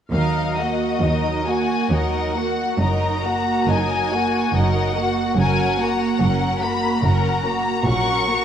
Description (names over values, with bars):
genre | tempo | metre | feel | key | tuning
classical, slow romantic movement for string orchestra | 66-74 BPM | 3/4 | rubato | Eb minor | A4 = 440 Hz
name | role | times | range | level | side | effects
clear symphonic violin section | melody | 0.1-8.4 s | Eb5 to Db6 | -24 LUFS | left 4 dB | none
rich studio violin section | second line | 0.1-8.4 s | Gb4 to Bb5 | -24 LUFS | left 2 dB | none
clear symphonic viola section | accompaniment | 0.1-8.4 s | Gb3 to Gb4 | -24 LUFS | right 3 dB | none
rich symphonic cello section | bass | 0.1-8.4 s | Eb2 to Bb2 | -25 LUFS | right 1 dB | none
rich symphonic double bass section | bass | 0.1-8.4 s | Gb1 to Eb2 | -25 LUFS | right 2 dB | none
room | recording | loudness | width
moderate scoring stage reverb, RT60 1.9 s | dark, warm production | -18 LUFS | side -9 dB against mid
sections
0.1-8.4 A section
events
none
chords
0.1 Ebm; 2.8 Ebm/Gb; 5.4 Gb; 7.9 Gb/Bb